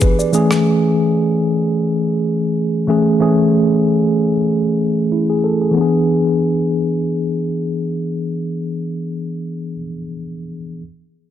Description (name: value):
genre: afrobeats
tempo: 94 BPM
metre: 4/4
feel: swing 55% on 16ths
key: E mixolydian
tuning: A4 = 440 Hz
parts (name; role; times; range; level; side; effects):
- mellow tine electric piano; accompaniment; 0.0-10.8 s; E3 to D5; -15 LUFS; equal; slow stereo tremolo, low-pass filter
- dusty soul sampler-style drum kit; drums; 0.0-0.6 s; kick drum, rim click, shaker; -18 LUFS; equal; overdrive
room: light reverb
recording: none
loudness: -14 LUFS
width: side -10 dB against mid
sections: 0.0-5.8 A section; 5.8-8.3 B section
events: filter sweep on tine electric piano 0.0-5.8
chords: 0.3 Amaj7/E; 5.8 E7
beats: 0.01 | 0.65 1.29 1.93 2.57 | 3.21 3.84 4.48 5.12 | 5.76 6.40 7.04 7.67